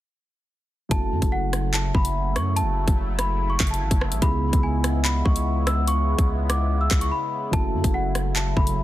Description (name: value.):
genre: hip hop, drill.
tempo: 145 BPM.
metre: 4/4.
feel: half-time.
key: F# minor.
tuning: A4 = 440 Hz.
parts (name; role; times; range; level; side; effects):
celesta; melody; 0.9-8.8 s; F#5 to E6; -28 LUFS; left 1 dB; none.
dark concert grand piano; accompaniment; 0.9-8.8 s; C#3 to G#4; -31 LUFS; right 3 dB; none.
sweeping resonant pad; sustained chords; 0.9-8.8 s; C#3 to E4; -31 LUFS; equal; chorus, phaser.
long sustained 808-style bass; bass; 0.9-8.8 s; F#1 to F#2; -24 LUFS; equal; none.
drill drum kit; drums; 0.9-8.8 s; handclaps, hi-hat, kick drum, rim click; -23 LUFS; equal; none.
room: digital ambience.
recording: dense, heavily limited modern master.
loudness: -20 LUFS.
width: side -14 dB against mid.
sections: 0.9-8.8 A section.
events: break 7.1-7.5.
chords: 0.9 F#m7; 4.2 C#m7; 7.5 F#m7.